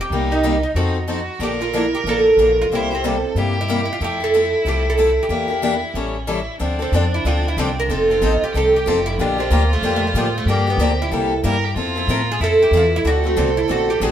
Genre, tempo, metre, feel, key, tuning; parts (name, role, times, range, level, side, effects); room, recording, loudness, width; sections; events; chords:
acoustic string swing (jazz manouche); 186 BPM; 4/4; swing 61% on 8ths; F major, D minor from 6.6 s; A4 = 441 Hz
oud; melody; 0.0-14.1 s; F3 to Bb4; -19 LUFS; right 2 dB
rich violin; second line; 0.0-14.1 s; C#4 to C5; -25 LUFS; right 2 dB
picked steel-string acoustic guitar; accompaniment; 0.1-14.1 s; C3 to A4; -22 LUFS; left 3 dB
upright bass; bass; 0.1-14.1 s; F1 to A2; -22 LUFS; equal
moderate stone room reverb, RT60 1.1 s; band playing live in one room; -16 LUFS; side -10 dB against mid
0.0-6.6 A section; 6.6-14.1 B section
oud solo 6.6-14.1
0.1 Cm7; 0.8 F7b9; 1.4 Bbmaj7; 2.7 C6; 4.0 Fmaj7; 5.3 Em7b5; 6.0 A7; 6.6 Dm7; 7.9 F7; 9.2 Bb6; 10.5 Gm7; 11.1 C7; 11.8 Fmaj7; 13.1 D7